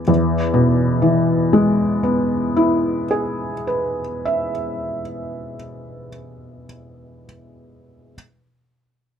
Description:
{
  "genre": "neoclassical minimalist piano",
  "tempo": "62 BPM",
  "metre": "3/4",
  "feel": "rubato",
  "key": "E major",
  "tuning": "A4 = 440 Hz",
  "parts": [
    { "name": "felt-muted upright piano", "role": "solo", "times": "0.0-8.2 s", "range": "E2 to E5", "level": "-17 LUFS", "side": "left 1 dB", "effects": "none" }
  ],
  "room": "light reverb",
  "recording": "close, detailed microphones",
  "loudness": "-17 LUFS",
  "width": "side -8 dB against mid",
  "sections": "0.1-5.9 A section",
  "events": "none",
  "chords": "0.1 E"
}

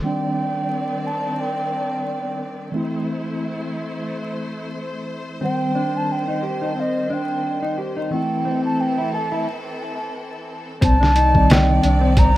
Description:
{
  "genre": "trip hop",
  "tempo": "89 BPM",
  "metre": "4/4",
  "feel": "swing 56% on 16ths",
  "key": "C dorian",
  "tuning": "A4 = 436 Hz",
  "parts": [
    { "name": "mellow baroque flute", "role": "melody", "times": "0.0-12.4 s", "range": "Eb5 to Bb5", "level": "-24 LUFS", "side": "right 1 dB", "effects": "tape echo" },
    { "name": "mellow tine electric piano", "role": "accompaniment", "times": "0.0-12.4 s", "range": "Eb3 to D5", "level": "-26 LUFS", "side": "equal", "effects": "medium stereo tremolo, vintage 12-bit sampler grit, low-pass filter" },
    { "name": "clear studio string section", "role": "sustained chords", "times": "0.0-12.4 s", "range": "Eb3 to D5", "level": "-30 LUFS", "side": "left 1 dB", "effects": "none" },
    { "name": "mellow electric guitar", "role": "arpeggios", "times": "5.4-12.4 s", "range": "A3 to A4", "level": "-24 LUFS", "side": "left 2 dB", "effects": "vintage 12-bit sampler grit, tape echo" },
    { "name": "soft dub sub bass", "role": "bass", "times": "10.8-12.4 s", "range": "C2", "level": "-17 LUFS", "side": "equal", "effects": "tube saturation" },
    { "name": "trip hop sampler-style drum kit", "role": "drums", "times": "10.8-12.3 s", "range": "hi-hat, kick drum, snare drum", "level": "-17 LUFS", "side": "equal", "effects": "none" }
  ],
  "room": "moderate small room reverb, RT60 0.5 s",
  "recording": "rough home demo mix, vinyl crackle",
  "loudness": "-19 LUFS",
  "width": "side -15 dB against mid",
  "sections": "0.0-10.8 A section; 10.8-12.4 B section",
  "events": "filter sweep on tine electric piano 0.0-10.8; break 9.5-10.8",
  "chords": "0.0 Cmadd9; 2.7 Am; 5.4 Cmadd9; 8.1 Am; 10.8 Cmadd9"
}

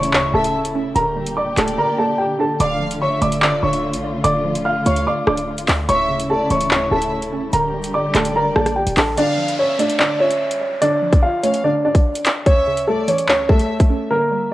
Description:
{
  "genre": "hip hop, drill",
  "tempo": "146 BPM",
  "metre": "4/4",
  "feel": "half-time",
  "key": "D harmonic minor",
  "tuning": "A4 = 440 Hz",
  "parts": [
    { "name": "dark baby grand piano", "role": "melody", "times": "0.0-14.5 s", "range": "A3 to F6", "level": "-18 LUFS", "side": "equal", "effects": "low-pass filter, cassette tape" },
    { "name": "warm symphonic violin section", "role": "second line", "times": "0.0-13.7 s", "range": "C#5 to F5", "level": "-29 LUFS", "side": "left 1 dB", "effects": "cassette tape, tape echo" },
    { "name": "hollow square pluck", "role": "accompaniment", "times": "0.0-14.5 s", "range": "D2 to D5", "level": "-27 LUFS", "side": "right 5 dB", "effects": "chorus, low-pass filter, cassette tape" },
    { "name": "dark studio string section", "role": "sustained chords", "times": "0.0-9.2 s", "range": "Bb2 to G4", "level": "-25 LUFS", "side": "left 1 dB", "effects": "cassette tape" },
    { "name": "short 808-style bass", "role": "bass", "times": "0.0-9.2 s", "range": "C#1 to D2", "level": "-26 LUFS", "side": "equal", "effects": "none" },
    { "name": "drill drum kit", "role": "drums", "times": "0.0-13.9 s", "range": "handclaps, hi-hat, kick drum, rim click", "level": "-18 LUFS", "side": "equal", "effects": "cassette tape" },
    { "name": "downlifter", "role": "sound effects", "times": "9.2-12.5 s", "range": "none", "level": "-31 LUFS", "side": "equal", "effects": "none" }
  ],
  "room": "moderate spring reverb, RT60 2.2 s",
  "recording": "home recording on cassette",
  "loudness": "-15 LUFS",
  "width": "side -16 dB against mid",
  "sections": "0.0-9.2 A section; 9.2-14.5 B section",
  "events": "drums muted 1.8-2.6",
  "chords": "0.0 A/D; 1.0 Gmadd9/D; 2.6 Dm; 5.9 A/D; 7.5 Gmadd9/D; 9.2 Dm; 12.5 A/D"
}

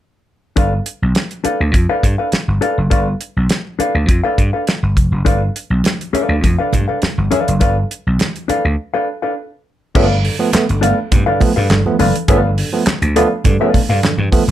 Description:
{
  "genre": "funk",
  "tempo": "102 BPM",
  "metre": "4/4",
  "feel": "straight",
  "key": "G mixolydian",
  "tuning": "A4 = 440 Hz",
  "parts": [
    { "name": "hollow-body jazz guitar", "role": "accompaniment", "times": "0.6-14.0 s", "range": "D4 to F5", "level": "-18 LUFS", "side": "left 3 dB", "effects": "none" },
    { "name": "vintage slap bass", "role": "bass", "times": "0.6-14.5 s", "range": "F1 to G2", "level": "-16 LUFS", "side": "equal", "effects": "none" },
    { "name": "damped 70s drum kit", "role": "drums", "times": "0.6-14.5 s", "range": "crash cymbal, handclaps, hi-hat, kick drum, snare drum", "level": "-16 LUFS", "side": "equal", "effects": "none" },
    { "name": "congas", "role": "percussion", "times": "5.3-14.5 s", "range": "none", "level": "-24 LUFS", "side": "right 4 dB", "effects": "none" },
    { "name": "barky tine electric piano", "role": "stabs", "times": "9.9-14.5 s", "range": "G2 to B3", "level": "-17 LUFS", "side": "right 4 dB", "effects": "overdrive" }
  ],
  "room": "moderate small room reverb, RT60 0.5 s",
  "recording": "none",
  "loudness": "-13 LUFS",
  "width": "side -12 dB against mid",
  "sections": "0.6-9.9 A section; 9.9-14.5 B section",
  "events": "break 8.8-9.9",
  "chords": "0.6 G9"
}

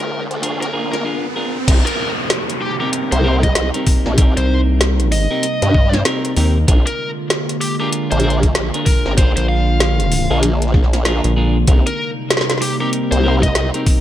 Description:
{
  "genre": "glitch hop",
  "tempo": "96 BPM",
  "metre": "4/4",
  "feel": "swing 61% on 16ths",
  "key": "C minor",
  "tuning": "A4 = 440 Hz",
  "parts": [
    { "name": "bluesy overdriven lead guitar", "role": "melody", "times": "0.0-13.7 s", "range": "G4 to F5", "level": "-24 LUFS", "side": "left 1 dB", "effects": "distortion, ping-pong delay" },
    { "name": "warbly tape-like pad", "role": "sustained chords", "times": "0.0-14.0 s", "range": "C3 to F4", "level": "-24 LUFS", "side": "right 1 dB", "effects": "chorus, built-in reverb, sidechain pumping" },
    { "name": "formant-sweep wobble bass", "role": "bass", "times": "0.0-13.7 s", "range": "Ab1 to G2", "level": "-17 LUFS", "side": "equal", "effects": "chorus, high-pass filter" },
    { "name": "drum and bass drum kit", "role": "drums", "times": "0.0-14.0 s", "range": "crash cymbal, hi-hat, snare drum", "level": "-21 LUFS", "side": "equal", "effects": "gated reverb" },
    { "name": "riser and downlifter", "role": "sound effects", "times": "0.0-6.7 s", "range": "none", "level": "-26 LUFS", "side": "right 1 dB", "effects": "none" },
    { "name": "clean electric guitar", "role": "stabs", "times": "0.4-14.0 s", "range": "C4 to Bb4", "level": "-24 LUFS", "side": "equal", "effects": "vintage 12-bit sampler grit, sidechain pumping, ping-pong delay" },
    { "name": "electronic kick drum", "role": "drums", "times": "1.7-14.0 s", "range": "none", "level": "-14 LUFS", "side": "equal", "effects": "none" },
    { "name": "rubbery square bass", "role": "bass", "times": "4.4-11.7 s", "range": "Bb1 to Eb2", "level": "-15 LUFS", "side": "equal", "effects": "none" }
  ],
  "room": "light reverb",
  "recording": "bright 1980s-style digital production",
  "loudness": "-14 LUFS",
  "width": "side -12 dB against mid",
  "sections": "0.0-1.7 A section; 1.7-14.0 B section",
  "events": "build-up 0.0-1.7; riser 0.0-1.7; filter sweep on clean electric guitar 0.0-1.7; drop 1.7-14.0",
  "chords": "0.0 Bb7; 1.7 Cm7; 6.7 Bb7; 11.7 Cm7"
}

